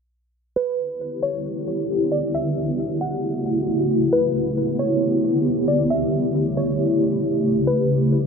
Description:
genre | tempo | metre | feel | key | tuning
hip hop | 135 BPM | 4/4 | half-time | E dorian | A4 = 441 Hz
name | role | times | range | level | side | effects
warbly dusty pluck | melody | 0.6-8.3 s | B4 to F#5 | -25 LUFS | equal | chorus, ping-pong delay
granular cloud pad | sustained chords | 1.1-8.3 s | C#3 to G4 | -20 LUFS | equal | built-in reverb
room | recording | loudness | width
light reverb, digital ambience | dark, warm production, low-pass filter | -19 LUFS | side -6 dB against mid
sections
0.6-8.3 A section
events
filter sweep 0.6-8.3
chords
0.6 Em7; 2.3 F#m7; 4.1 Em7; 5.9 A7; 7.7 Em7

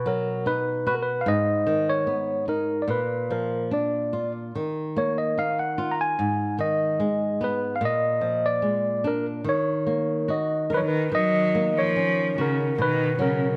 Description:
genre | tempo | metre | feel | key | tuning
fado-style ballad | 74 BPM | 2/4 | rubato | Eb minor | A4 = 440 Hz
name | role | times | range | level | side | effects
tine electric piano | melody | 0.0-13.6 s | Bb4 to Bb5 | -27 LUFS | equal | none
flamenco guitar | accompaniment | 0.0-13.6 s | Ab2 to Bb4 | -30 LUFS | equal | none
clear cello | second line | 10.7-13.6 s | Db3 to Gb3 | -27 LUFS | equal | none
room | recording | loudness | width
moderate scoring stage reverb, RT60 1.7 s | close, detailed microphones | -25 LUFS | mono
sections
0.0-11.1 A section; 11.1-13.6 A section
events
none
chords
0.0 B; 1.3 Abm; 2.9 Bb; 4.6 Ebsus2; 6.2 Abm; 7.8 Bb7; 9.5 Ebm7; 12.8 B

